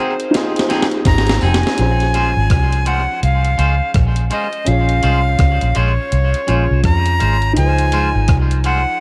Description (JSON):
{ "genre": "lovers rock reggae", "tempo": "83 BPM", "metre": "4/4", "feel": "swing 61% on 16ths", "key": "Bb minor", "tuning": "A4 = 440 Hz", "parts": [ { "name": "breathy bright alto recorder", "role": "melody", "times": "0.0-9.0 s", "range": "C5 to Bb5", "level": "-23 LUFS", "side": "equal", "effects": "tape echo" }, { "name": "soft string machine", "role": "second line", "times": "0.0-1.8 s", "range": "C4 to F5", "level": "-30 LUFS", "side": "equal", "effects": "none" }, { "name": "warm concert grand piano", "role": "accompaniment", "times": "0.0-9.0 s", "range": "F3 to Db5", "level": "-26 LUFS", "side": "equal", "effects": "none" }, { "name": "twangy electric guitar", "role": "stabs", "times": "0.0-8.8 s", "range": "F3 to C5", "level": "-26 LUFS", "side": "equal", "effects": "tape echo" }, { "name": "gated 80s digital drum machine", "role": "drums", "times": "0.2-8.8 s", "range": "hi-hat, kick drum, rim click, snare drum", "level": "-21 LUFS", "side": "equal", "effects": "gated reverb, gated reverb snare, tape echo" }, { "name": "vintage muted fingered electric bass", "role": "bass", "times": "1.1-8.8 s", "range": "F1 to F2", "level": "-18 LUFS", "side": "equal", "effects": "none" } ], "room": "little or no reverb", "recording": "dark, warm production", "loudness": "-15 LUFS", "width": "mono", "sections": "0.0-1.8 A section; 1.8-9.0 B section", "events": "drum fill 0.3-1.8", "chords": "0.3 Fm7; 1.8 Bbm9; 7.6 Dbmaj7", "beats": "0.33 1.06 | 1.78 2.50 3.22 3.95 | 4.67 5.39 6.12 6.84 | 7.56 8.29" }